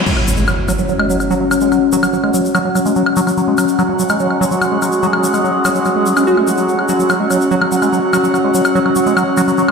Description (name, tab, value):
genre	psychedelic trance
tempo	145 BPM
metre	4/4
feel	straight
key	unclear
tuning	A4 = 440 Hz
part	overtone-sweeping drone	sustained chords	0.0-9.7 s	F#3 to C#4	-17 LUFS	left 2 dB	chorus, built-in reverb
part	liquid acid bass	riff	0.0-9.7 s	F#3 to F#4	-17 LUFS	right 1 dB	phaser, auto-pan, tape echo
part	electronic crash cymbal and woodblock	drums	0.1-9.7 s	none	-21 LUFS	left 2 dB	none
part	tube shaker	percussion	0.1-9.7 s	none	-27 LUFS	left 3 dB	none
part	impact	sound effects	0.1-1.7 s	none	-21 LUFS	equal	none
part	airy breathy pad	texture	0.6-9.7 s	C#4 to F#5	-18 LUFS	right 1 dB	chorus
room	wet lush hall reverb, RT60 2.2 s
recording	played on a big sound system in a bare room, stone room reverb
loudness	-12 LUFS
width	side -5 dB against mid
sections	0.1-9.7 A section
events	impact 0.1-1.7; filter sweep on synth drone 0.1-9.7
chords	0.1 F#5